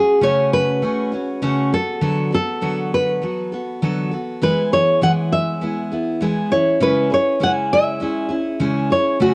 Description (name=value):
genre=acoustic pop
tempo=100 BPM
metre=4/4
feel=straight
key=unclear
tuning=A4 = 439 Hz
part: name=nylon-string guitar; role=melody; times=0.0-9.3 s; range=F#4 to F#5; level=-20 LUFS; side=equal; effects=none
part: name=picked steel-string acoustic guitar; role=accompaniment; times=0.0-9.3 s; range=C#3 to A4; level=-23 LUFS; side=equal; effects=cassette tape
room=moderate spring reverb, RT60 1.9 s, small room ambience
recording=home recording on cassette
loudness=-19 LUFS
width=mono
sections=0.0-9.3 A section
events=none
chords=0.0 F#madd9/C#; 1.7 D6; 4.4 E; 6.5 C#m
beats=0.23 0.83 1.43 | 2.03 2.62 3.22 3.82 | 4.42 5.01 5.61 6.21 | 6.81 7.40 8.00 8.60 | 9.19